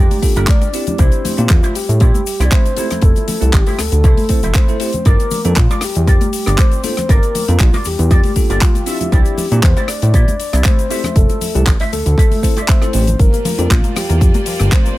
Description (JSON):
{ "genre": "nu-disco, nu disco", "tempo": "118 BPM", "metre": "4/4", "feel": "swing 53% on 16ths", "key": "G dorian", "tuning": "A4 = 440 Hz", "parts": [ { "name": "soft octave-layered synth lead", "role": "melody", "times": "0.0-15.0 s", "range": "F4 to D5", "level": "-22 LUFS", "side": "left 1 dB", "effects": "chorus, cassette tape, digital delay" }, { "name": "electric guitar with an envelope filter", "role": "riff", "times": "0.0-12.9 s", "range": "D4 to G5", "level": "-26 LUFS", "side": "right 2 dB", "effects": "analog chorus" }, { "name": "fat analog bass", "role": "bass", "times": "0.0-14.7 s", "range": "F1 to Bb2", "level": "-14 LUFS", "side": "equal", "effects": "none" }, { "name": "tight funk drum kit", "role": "drums", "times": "0.1-15.0 s", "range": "handclaps, hi-hat, rim click, shaker", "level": "-22 LUFS", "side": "left 2 dB", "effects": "none" }, { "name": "congas", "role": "percussion", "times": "0.1-14.8 s", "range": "none", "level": "-25 LUFS", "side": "left 3 dB", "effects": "none" }, { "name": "bell-like tine electric piano", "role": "accompaniment", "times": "0.2-13.7 s", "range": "A3 to C5", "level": "-24 LUFS", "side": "equal", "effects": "fast stereo tremolo, sidechain pumping" }, { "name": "electronic kick drum", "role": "drums", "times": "0.2-14.8 s", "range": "none", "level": "-12 LUFS", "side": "equal", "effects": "none" }, { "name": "rich studio violin section", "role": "sustained chords", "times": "13.2-15.0 s", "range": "Bb3 to D5", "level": "-28 LUFS", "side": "right 2 dB", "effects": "sidechain pumping" }, { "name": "analog pluck", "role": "arpeggios", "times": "13.2-15.0 s", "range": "F3 to D4", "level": "-27 LUFS", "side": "left 3 dB", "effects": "chorus, sidechain pumping, digital delay" } ], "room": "small room ambience", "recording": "none", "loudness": "-11 LUFS", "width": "side -17 dB against mid", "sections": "0.0-15.0 A section", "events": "clean electric guitar fill 8.4-9.1", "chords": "0.0 Gm7; 1.0 Cadd9; 2.8 Fmaj7; 5.1 Gm7; 9.1 Cadd9; 10.9 Fmaj7; 13.2 Gm7" }